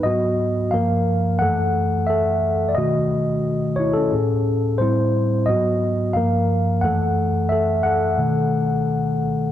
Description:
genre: soul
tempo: 89 BPM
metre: 4/4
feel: straight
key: F# dorian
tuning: A4 = 439 Hz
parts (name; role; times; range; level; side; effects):
- mellow tine electric piano; solo; 0.0-9.5 s; F#2 to F#5; -18 LUFS; equal; none
room: moderate echo chamber reverb, RT60 1.8 s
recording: dark, warm production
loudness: -18 LUFS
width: side -11 dB against mid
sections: 0.1-9.5 A section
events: tine electric piano solo 0.1-9.5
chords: 0.1 G#m7; 0.7 Gm7; 1.4 F#m7; 2.8 B9; 4.1 Amaj7; 4.8 Am7; 5.5 G#m7; 6.2 Gm7; 6.8 F#m7; 8.2 B7

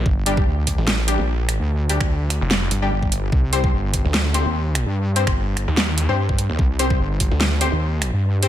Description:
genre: heavy wobble dubstep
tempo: 147 BPM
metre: 4/4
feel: swing 54% on 16ths, half-time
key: unclear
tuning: A4 = 440 Hz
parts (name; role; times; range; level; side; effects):
- snarling distorted saw bass; bass; 0.0-7.7 s; F1 to Eb2; -20 LUFS; equal; distortion, overdrive
- wobble bass; bass; 0.1-8.5 s; G1 to G2; -21 LUFS; equal; chorus, overdrive
- electronic kick drum; drums; 0.1-7.3 s; none; -20 LUFS; equal; none
- orchestra-hit-like synth stab; stabs; 0.3-8.5 s; G3 to C5; -26 LUFS; left 3 dB; built-in reverb, dub echo
- dubstep drum kit; drums; 0.3-8.5 s; finger snaps, hi-hat, snare drum; -23 LUFS; right 1 dB; none
room: little or no reverb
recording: none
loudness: -18 LUFS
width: side -12 dB against mid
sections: 0.0-8.5 A section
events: none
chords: 0.0 G5; 3.3 Cm

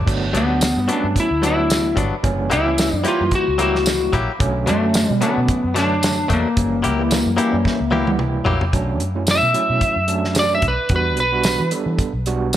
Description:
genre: straight-eighth soul blues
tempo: 111 BPM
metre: 4/4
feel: swing 56% on 16ths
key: B minor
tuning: A4 = 441 Hz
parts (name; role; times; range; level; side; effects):
- vintage muted fingered electric bass; bass; 0.0-12.6 s; F#1 to E3; -24 LUFS; equal; none
- overdriven tine electric piano; accompaniment; 0.1-12.6 s; D3 to G5; -25 LUFS; right 5 dB; medium tremolo
- warm soul drum kit; drums; 0.1-12.6 s; crash cymbal, hi-hat, kick drum, snare drum, tambourine, toms; -21 LUFS; equal; none
- direct-recorded clean electric guitar; stabs; 0.3-8.6 s; G2 to G4; -24 LUFS; left 3 dB; analog delay
- lightly driven lead guitar; melody; 0.4-11.7 s; A3 to E5; -19 LUFS; left 1 dB; none
room: light reverb, small room ambience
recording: none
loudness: -16 LUFS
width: side -11 dB against mid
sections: 0.0-8.7 A section; 8.7-12.6 B section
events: tine electric piano fill 7.1-8.7; drum fill 7.7-8.7; lead electric guitar solo 8.7-12.6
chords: 0.1 Gmaj7; 2.2 F#7b9; 4.4 Bm7; 6.6 F#7b9; 8.7 Bm7; 10.9 Em7

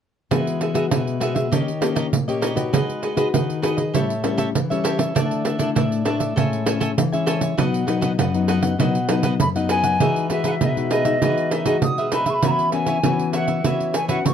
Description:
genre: samba and choro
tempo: 99 BPM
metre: 4/4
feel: straight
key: E major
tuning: A4 = 440 Hz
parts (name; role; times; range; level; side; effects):
- cavaquinho; accompaniment; 0.3-14.2 s; D4 to G#5; -25 LUFS; right 2 dB; none
- nylon-string guitar; accompaniment; 0.3-14.3 s; F#2 to B4; -23 LUFS; left 6 dB; none
- pandeiro; percussion; 0.3-14.3 s; none; -22 LUFS; right 4 dB; none
- bright wooden flute; melody; 9.4-14.3 s; D#5 to D#6; -23 LUFS; left 1 dB; none
room: wet studio ambience, RT60 0.5 s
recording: dark, warm production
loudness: -18 LUFS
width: side -8 dB against mid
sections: 0.3-10.0 A section; 10.0-14.3 B section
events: none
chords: 0.3 Eadd9; 1.5 D#7; 2.7 G#m7; 3.9 A7; 5.2 Dsus2; 6.4 Amaj7; 7.6 B; 10.0 Emaj9; 12.4 C#m7/E

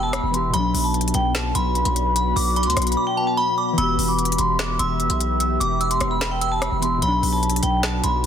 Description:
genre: hip hop, trap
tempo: 148 BPM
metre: 4/4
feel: half-time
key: E minor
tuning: A4 = 436 Hz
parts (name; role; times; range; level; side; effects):
- vibraphone with medium hard mallets; melody; 0.0-8.3 s; G5 to E6; -23 LUFS; equal; digital delay
- delicate synth tine bell; second line; 0.0-8.2 s; A5 to E6; -28 LUFS; right 3 dB; chorus, digital delay
- warbly lo-fi synth keys; accompaniment; 0.0-8.3 s; B2 to G4; -28 LUFS; left 2 dB; chorus
- deep dark ambient pad; sustained chords; 0.0-8.3 s; B3 to B5; -27 LUFS; left 2 dB; chorus, built-in reverb
- distorted 808-style bass; bass; 0.0-8.3 s; E1 to D2; -24 LUFS; equal; distortion
- trap drum kit; drums; 0.1-8.3 s; finger snaps, hi-hat, rim click, snare drum; -26 LUFS; left 2 dB; soft clipping on snare
room: light reverb, digital ambience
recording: dense, heavily limited modern master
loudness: -18 LUFS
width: side -8 dB against mid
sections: 0.0-8.3 A section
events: drums muted 3.0-3.8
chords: 0.0 Em; 0.5 Bm; 3.8 Em; 7.0 Bm

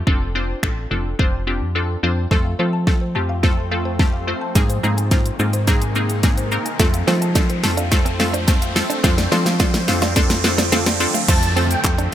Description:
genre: dance-pop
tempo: 107 BPM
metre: 4/4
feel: straight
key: F major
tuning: A4 = 440 Hz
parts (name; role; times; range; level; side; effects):
- wavetable chord stab; accompaniment; 0.0-12.1 s; A3 to C5; -23 LUFS; left 1 dB; sidechain pumping
- solid FM bass; bass; 0.0-12.1 s; F1 to F3; -22 LUFS; equal; sidechain pumping
- pop drum kit; drums; 0.1-12.1 s; crash cymbal, finger snaps, handclaps, hi-hat, kick drum, shaker, snare drum; -18 LUFS; equal; none
- shimmering ambient pad; sustained chords; 3.1-12.1 s; C3 to F4; -28 LUFS; equal; chorus, built-in reverb, sidechain pumping
- mallet-like synth pluck; arpeggios; 2.3-11.2 s; C5 to C6; -30 LUFS; left 3 dB; chorus, sidechain pumping, digital delay
- riser and downlifter; sound effects; 5.2-12.1 s; none; -28 LUFS; right 2 dB; none
- direct-recorded clean electric guitar; riff; 6.8-12.1 s; A3 to F4; -27 LUFS; right 7 dB; wide subtle chorus
- filtered supersaw swell; melody; 11.3-11.8 s; G5 to A5; -24 LUFS; right 1 dB; none
room: light reverb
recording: bright 1980s-style digital production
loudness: -16 LUFS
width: side -11 dB against mid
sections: 0.0-2.3 A section; 2.3-11.3 B section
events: drums muted 1.8-2.3; build-up 2.3-11.3; drum fill 2.3-11.3; riser 5.2-11.3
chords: 0.1 Dm7/F; 2.3 F; 4.6 Abadd9; 6.8 Dm7/F

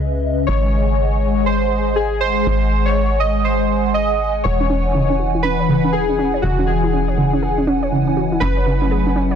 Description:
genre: IDM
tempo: 121 BPM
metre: 4/4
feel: swing 62% on 16ths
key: unclear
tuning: A4 = 441 Hz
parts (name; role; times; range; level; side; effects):
- hollow soft pad; sustained chords; 0.0-9.4 s; C#3 to G#5; -21 LUFS; left 2 dB; ensemble chorus
- woody FM bass; bass; 0.0-9.4 s; E1 to C#2; -20 LUFS; equal; tube saturation
- warbly lo-fi synth keys; melody; 0.5-9.1 s; F#4 to D#5; -21 LUFS; equal; chorus, tape echo
- warbly dusty pluck; arpeggios; 4.4-9.3 s; C#3 to C#5; -20 LUFS; right 2 dB; chorus, tape echo
room: light reverb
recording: dense, heavily limited modern master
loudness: -15 LUFS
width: side -8 dB against mid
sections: 0.0-9.4 A section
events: filter sweep on analog synth pad 0.0-9.4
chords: 0.5 G#7; 4.4 Emaj7; 8.4 F#m7

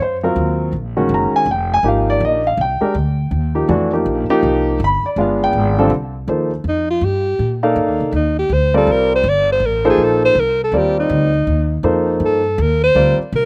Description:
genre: modal jazz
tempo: 162 BPM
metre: 3/4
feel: swing 64% on 8ths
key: C dorian from 5.9 s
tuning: A4 = 436 Hz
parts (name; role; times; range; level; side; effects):
- warm grand piano; accompaniment; 0.0-13.2 s; D3 to B5; -18 LUFS; equal; none
- upright bass; bass; 0.0-13.5 s; F1 to Bb2; -22 LUFS; equal; none
- mellow alto saxophone; melody; 6.7-13.5 s; Eb4 to D5; -18 LUFS; equal; none
room: little or no reverb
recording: recorded outdoors, with no room sound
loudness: -16 LUFS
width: mono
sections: 0.0-5.9 A section; 5.9-13.5 A section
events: alto saxophone solo 5.9-13.5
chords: 0.0 Ebm11; 1.5 Fm11; 4.8 G7b9; 5.9 Cm11

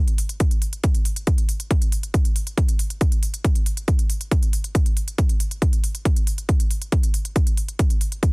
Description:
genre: techno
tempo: 138 BPM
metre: 4/4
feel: straight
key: none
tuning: none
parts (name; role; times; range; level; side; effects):
- electronic hi-hat; drums; 0.1-8.3 s; none; -31 LUFS; equal; none
- electronic kick drum; drums; 0.4-8.3 s; none; -19 LUFS; equal; none
room: little or no reverb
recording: heavily compressed radio sound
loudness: -19 LUFS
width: side -35 dB against mid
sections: 0.0-8.3 A section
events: none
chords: none

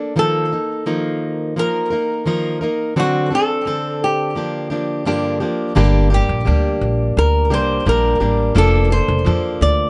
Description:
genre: acoustic pop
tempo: 86 BPM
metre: 4/4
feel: straight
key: G minor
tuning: A4 = 440 Hz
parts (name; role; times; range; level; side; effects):
- fingerpicked plugged-in steel-string acoustic guitar; accompaniment; 0.0-9.9 s; G2 to Bb4; -22 LUFS; equal; none
- nylon-string guitar; melody; 0.2-9.9 s; F#4 to D5; -22 LUFS; equal; digital delay
- upright bass; bass; 5.8-9.9 s; F1 to F2; -19 LUFS; equal; none
room: light reverb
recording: nothing above 10.6 kHz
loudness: -18 LUFS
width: mono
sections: 0.0-5.8 A section; 5.8-9.9 B section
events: none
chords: 0.2 Ebsus2; 3.0 D7; 4.4 Gm7; 5.8 Gm; 8.6 Bbmaj7/F

